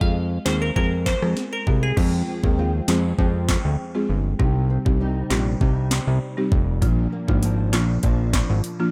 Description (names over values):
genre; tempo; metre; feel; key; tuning
dancehall; 99 BPM; 4/4; straight; unclear; A4 = 437 Hz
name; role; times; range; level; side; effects
glassy wavetable pluck; melody; 0.0-2.0 s; Ab4 to F5; -31 LUFS; equal; chorus, analog delay
buzzing marimba with medium mallets; accompaniment; 0.0-8.9 s; F3 to Ab4; -29 LUFS; equal; sidechain pumping
fat analog bass; bass; 0.0-8.6 s; F1 to F2; -24 LUFS; equal; none
island pop drum kit; drums; 0.0-8.8 s; crash cymbal, handclaps, hi-hat, kick drum, rim click, snare drum; -26 LUFS; equal; overdrive
nylon-string guitar; arpeggios; 2.0-8.9 s; F2 to F4; -32 LUFS; equal; ensemble chorus
room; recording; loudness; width
light reverb; none; -22 LUFS; mono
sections
0.0-2.0 A section; 2.0-8.9 B section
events
none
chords
0.0 Fm; 4.4 Cm; 6.8 Bb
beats
0.15 0.76 1.37 | 1.97 2.58 3.18 3.79 | 4.40 5.00 5.61 6.21 | 6.82 7.43 8.03 8.64